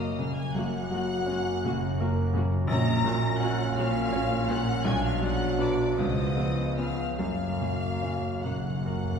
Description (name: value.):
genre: classical.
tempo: 46-57 BPM (dotted quarters).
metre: 12/8.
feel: rubato.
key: F# major.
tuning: A4 = 436 Hz.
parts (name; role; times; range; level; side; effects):
rich symphonic violin section; melody; 0.0-9.2 s; D6 to A#6; -38 LUFS; left 2 dB; none.
warm baby grand piano; melody; 0.0-9.2 s; A#1 to C#5; -29 LUFS; left 1 dB; none.
mellow clarinet; second line; 0.0-9.2 s; A#3 to D4; -39 LUFS; right 1 dB; none.
mellow hollow large flute ensemble; second line; 0.0-9.2 s; D5 to A#5; -37 LUFS; left 2 dB; none.
warm symphonic violin section; second line; 0.0-9.2 s; D5 to A#5; -38 LUFS; left 2 dB; none.
warm bassoon; accompaniment; 0.0-9.2 s; E#3 to F#3; -39 LUFS; right 3 dB; none.
mellow French horn section; sustained chords; 0.0-9.2 s; E#3 to D4; -36 LUFS; equal; none.
rich symphonic cello section; bass; 0.0-9.2 s; F#2 to C#3; -34 LUFS; right 2 dB; none.
rich symphonic double bass section; bass; 0.0-9.2 s; F#1 to C#2; -33 LUFS; right 1 dB; none.
warm symphonic viola section; accompaniment; 0.2-8.9 s; A#3 to F#4; -38 LUFS; right 2 dB; none.
timpani; percussion; 7.2-9.2 s; F#2; -38 LUFS; right 2 dB; none.
room: wet scoring stage reverb, RT60 1.9 s.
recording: heard from further back in the room.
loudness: -25 LUFS.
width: side -6 dB against mid.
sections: 0.0-9.2 A section.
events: timpani fill 7.2-9.2.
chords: 0.0 F#; 2.7 F#/A#; 4.9 Bm; 6.0 C#7; 7.2 F#.